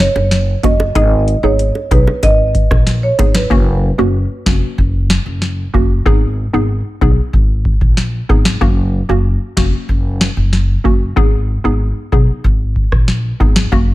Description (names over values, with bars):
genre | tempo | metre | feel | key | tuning
dancehall | 94 BPM | 4/4 | straight | unclear | A4 = 439 Hz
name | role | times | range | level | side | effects
marimba with medium mallets | melody | 0.0-3.5 s | B4 to D#5 | -17 LUFS | right 2 dB | tape echo
upright bass | bass | 0.0-13.9 s | E#1 to B1 | -16 LUFS | equal | none
booming analog drum machine | drums | 0.0-13.9 s | hi-hat, kick drum, rim click, snare drum | -13 LUFS | equal | vintage 12-bit sampler grit
bongos | percussion | 0.2-3.5 s | none | -24 LUFS | right 4 dB | none
hollow square pluck | accompaniment | 0.6-13.9 s | A#3 to G#4 | -19 LUFS | equal | chorus
room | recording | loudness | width
studio ambience | none | -11 LUFS | side -17 dB against mid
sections
0.0-3.5 A section; 3.5-13.9 B section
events
none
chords
0.0 F#; 1.0 G#m; 3.5 F#; 6.1 G#m; 8.6 F#; 11.2 G#m